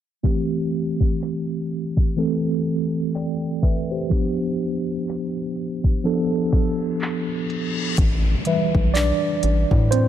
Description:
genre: contemporary R&B.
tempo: 62 BPM.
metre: 4/4.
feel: swing 58% on 16ths.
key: A minor.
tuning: A4 = 439 Hz.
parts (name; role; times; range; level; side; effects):
mellow tine electric piano; accompaniment; 0.2-10.1 s; E3 to G5; -22 LUFS; right 1 dB; medium stereo tremolo.
smooth R&B drum kit; drums; 0.2-10.1 s; handclaps, hi-hat, kick drum; -21 LUFS; left 1 dB; none.
reverse cymbal and downlifter; sound effects; 7.3-10.1 s; none; -31 LUFS; left 3 dB; none.
rubbery square bass; bass; 8.0-10.1 s; A1 to A2; -20 LUFS; left 1 dB; none.
celesta; texture; 8.5-10.1 s; E5; -30 LUFS; left 6 dB; ping-pong delay.
room: light reverb, digital ambience.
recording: low-pass filter.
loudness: -20 LUFS.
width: side -10 dB against mid.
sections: 0.2-8.0 A section; 8.0-10.1 B section.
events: filter sweep 0.2-8.0; reverse cymbal 7.3-8.0; tine electric piano solo 8.0-10.1.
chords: 0.2 Am7; 4.1 G7; 8.0 Am7.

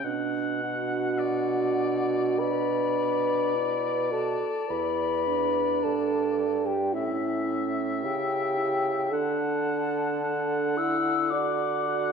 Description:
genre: classical, slow romantic movement for wind quintet.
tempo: 47-56 BPM.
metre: 4/4.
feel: rubato.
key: D major.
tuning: A4 = 439 Hz.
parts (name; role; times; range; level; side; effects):
clear oboe; second line; 0.0-12.1 s; D5 to F#5; -34 LUFS; left 3 dB; none.
dark clarinet; accompaniment; 0.0-12.1 s; C#4 to F#4; -32 LUFS; right 12 dB; none.
warm bassoon; bass; 0.0-12.1 s; E2 to D3; -33 LUFS; right 1 dB; none.
mellow hollow concert flute; melody; 0.6-12.1 s; E5 to E6; -32 LUFS; left 9 dB; none.
warm French horn; accompaniment; 0.6-12.1 s; E4 to D5; -28 LUFS; equal; none.
room: moderate scoring stage reverb, RT60 1.6 s.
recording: dark, warm production.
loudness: -24 LUFS.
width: side -6 dB against mid.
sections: 0.0-12.1 A section.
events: none.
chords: 0.0 Bm; 4.7 Em7; 6.9 A7; 9.1 D.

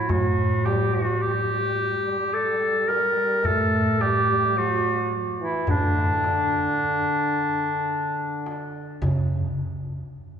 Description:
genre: Turkish makam ensemble.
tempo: 108 BPM (eighths).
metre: 10/8.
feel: straight.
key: unclear.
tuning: A4 = 440 Hz.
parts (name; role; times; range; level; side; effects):
clear clarinet; melody; 0.0-9.0 s; D4 to Bb4; -23 LUFS; equal; none.
warm French horn; second line; 0.0-9.0 s; C#3-20c to A3; -30 LUFS; right 2 dB; none.
upright bass; bass; 0.1-9.5 s; A2 to C#3; -28 LUFS; equal; none.
darbuka; percussion; 0.1-9.3 s; none; -30 LUFS; left 1 dB; none.
room: wet church reverb, RT60 3.1 s.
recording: recorded in a church or concert hall, nothing above 10.5 kHz.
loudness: -21 LUFS.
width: side -8 dB against mid.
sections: 0.1-10.4 A section.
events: none.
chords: none.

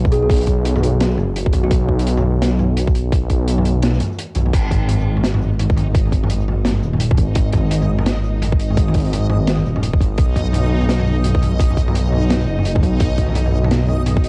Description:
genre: half-time drum and bass.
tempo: 170 BPM.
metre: 4/4.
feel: swing 60% on 16ths, half-time.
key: G# minor.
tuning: A4 = 440 Hz.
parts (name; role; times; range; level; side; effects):
dark detuned saw bass; bass; 0.0-14.3 s; D#1 to B1; -20 LUFS; equal; none.
kalimba; melody; 0.1-1.8 s; F#4 to G#4; -27 LUFS; equal; cassette tape, tape echo.
crunchy breakbeat drum kit; drums; 0.1-14.3 s; crash cymbal, hi-hat, shaker, snare drum, toms; -24 LUFS; equal; cassette tape.
electronic kick drum; drums; 0.1-14.2 s; none; -19 LUFS; equal; cassette tape.
backwards swelling texture; texture; 5.4-14.3 s; D#4 to D#5; -31 LUFS; equal; built-in reverb, cassette tape.
room: little or no reverb.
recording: home recording on cassette.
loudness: -17 LUFS.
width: mono.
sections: 0.0-4.5 A section; 4.5-14.3 A section.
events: drop 0.0-4.5, 4.5-14.3; break 4.2-4.5.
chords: 0.0 B5; 4.5 G#5; 10.2 B.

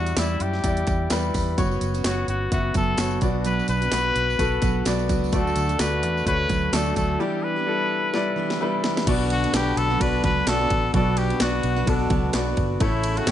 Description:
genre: piano-driven pop.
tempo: 128 BPM.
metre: 4/4.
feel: swing 56% on 16ths.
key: B minor.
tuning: A4 = 440 Hz.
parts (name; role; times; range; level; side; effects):
clear trumpet; melody; 0.0-13.3 s; D4 to B4; -26 LUFS; left 1 dB; none.
clear grand piano; accompaniment; 0.0-13.3 s; A2 to E5; -26 LUFS; left 3 dB; none.
vintage muted fingered electric bass; bass; 0.0-13.3 s; F#1 to F#2; -26 LUFS; equal; none.
house drum kit; drums; 0.1-13.3 s; crash cymbal, handclaps, hi-hat, kick drum, ride cymbal, snare drum; -26 LUFS; equal; none.
tambourine; percussion; 0.1-7.1 s; none; -40 LUFS; right 10 dB; none.
picked steel-string acoustic guitar; riff; 1.6-13.3 s; F#2 to A4; -30 LUFS; right 8 dB; none.
warm French horn section; second line; 9.1-13.3 s; B2 to D4; -32 LUFS; left 4 dB; none.
room: moderate large studio reverb, RT60 1.4 s, small room ambience.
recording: nothing above 10.6 kHz.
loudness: -20 LUFS.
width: side -11 dB against mid.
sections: 0.0-9.1 A section; 9.1-13.3 B section.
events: drum fill 8.1-9.1.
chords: 0.0 Em7; 1.6 F#sus4; 3.2 Bm; 5.3 D; 7.2 Em7; 9.1 Bm; 12.8 A.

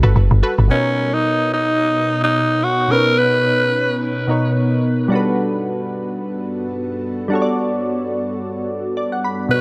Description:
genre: amapiano.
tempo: 109 BPM.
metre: 4/4.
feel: swing 55% on 16ths.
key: unclear.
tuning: A4 = 441 Hz.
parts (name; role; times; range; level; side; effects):
ethereal airy pad; sustained chords; 0.0-9.6 s; G2 to C#5; -27 LUFS; equal; ensemble chorus, built-in reverb, phaser.
punchy chord stab; stabs; 0.0-0.6 s; F#4 to B4; -28 LUFS; equal; chorus, tape echo.
woody log drum bass; bass; 0.0-0.7 s; F#1 to G1; -15 LUFS; equal; none.
raspy alto saxophone; melody; 0.7-4.0, 9.5-9.6 s; C#4 to B4; -20 LUFS; equal; tape echo.
glassy digital keys; accompaniment; 0.7-9.6 s; B2 to B5; -23 LUFS; equal; chorus.
room: moderate lush hall reverb, RT60 2.3 s.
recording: none.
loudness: -18 LUFS.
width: mono.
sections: 0.7-9.6 A section.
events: synth keys fill 8.7-9.5.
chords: 0.0 Gmaj9; 0.7 Bmaj9; 5.1 Gmaj9.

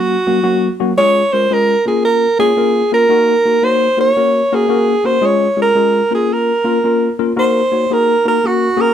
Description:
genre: soul.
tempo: 112 BPM.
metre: 4/4.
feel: swing 66% on 8ths.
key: unclear.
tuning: A4 = 440 Hz.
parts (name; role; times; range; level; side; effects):
breathy alto saxophone; melody; 0.0-8.9 s; Gb4 to Db5; -13 LUFS; right 2 dB; none.
tine electric piano; accompaniment; 0.0-8.9 s; Gb3 to Db5; -16 LUFS; left 4 dB; medium stereo tremolo.
room: moderate studio reverb, RT60 0.7 s.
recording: band playing live in one room.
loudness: -11 LUFS.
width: side -9 dB against mid.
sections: 0.0-8.9 A section.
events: none.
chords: 0.0 Gb; 1.0 Db; 1.8 Bbm; 3.1 Ebm; 4.2 Gb; 5.2 Db; 6.0 Bbm; 7.4 Ebm; 8.4 Gb.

